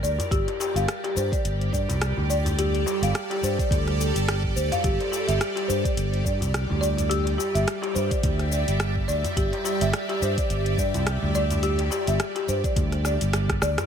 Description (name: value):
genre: organic downtempo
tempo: 106 BPM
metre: 4/4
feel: swing 57% on 16ths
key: unclear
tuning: A4 = 440 Hz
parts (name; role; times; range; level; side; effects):
- bowed-like drone; sustained chords; 0.0-13.9 s; G3 to E5; -30 LUFS; right 2 dB; built-in reverb, phaser, sidechain pumping
- folk marimba with soft mallets; arpeggios; 0.0-13.7 s; G4 to F5; -28 LUFS; left 1 dB; ping-pong delay
- sustaining fretless electric bass; bass; 0.0-13.8 s; G1 to G2; -25 LUFS; equal; sidechain pumping
- afro-pop drum kit; drums; 0.0-13.9 s; cabasa, hi-hat, rim click; -31 LUFS; left 1 dB; none
- darbuka; percussion; 0.2-13.9 s; none; -35 LUFS; left 2 dB; none
- electronic kick drum; drums; 0.3-13.6 s; none; -27 LUFS; equal; none
room: light reverb, digital ambience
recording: none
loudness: -22 LUFS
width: side -8 dB against mid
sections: 0.0-13.9 A section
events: drum fill 13.0-13.9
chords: 0.0 Gm; 4.8 Dsus2/G